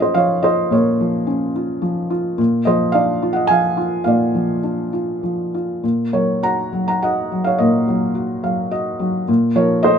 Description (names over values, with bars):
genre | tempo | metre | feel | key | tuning
classical, lyrical solo piano | 98-109 BPM | 3/4 | rubato | Bb minor | A4 = 440 Hz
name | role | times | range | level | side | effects
felt-muted upright piano | solo | 0.0-10.0 s | Bb2 to Bb5 | -16 LUFS | equal | none
room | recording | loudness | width
light reverb | none | -16 LUFS | side -7 dB against mid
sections
0.0-10.0 A section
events
felt piano fill 8.2-9.3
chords
0.0 Bbm7; 2.4 Bb7; 5.8 Ebm7/Bb; 9.3 F7/Bb